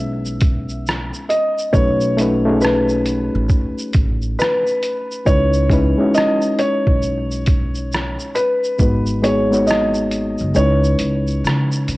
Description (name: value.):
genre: lo-fi hip hop.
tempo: 68 BPM.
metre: 4/4.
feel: swing 65% on 16ths.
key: C# minor.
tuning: A4 = 440 Hz.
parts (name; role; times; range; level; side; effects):
felt-muted upright piano; melody; 0.0-11.8 s; B4 to E5; -20 LUFS; equal; low-pass filter, cassette tape.
reed electric piano; accompaniment; 0.0-12.0 s; G#3 to C#5; -20 LUFS; left 1 dB; cassette tape, low-pass filter.
upright bass; bass; 0.0-12.0 s; F#1 to C#3; -21 LUFS; equal; none.
trip hop sampler-style drum kit; drums; 0.3-12.0 s; hi-hat, kick drum, rim click, shaker; -20 LUFS; equal; cassette tape.
room: light reverb, digital ambience.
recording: home recording on cassette.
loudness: -15 LUFS.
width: side -20 dB against mid.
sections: 0.0-12.0 A section.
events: kick muted 10.6-12.0.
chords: 0.0 C#m7; 1.7 B7; 5.3 C#m7; 8.8 G#m7; 10.6 C#m9.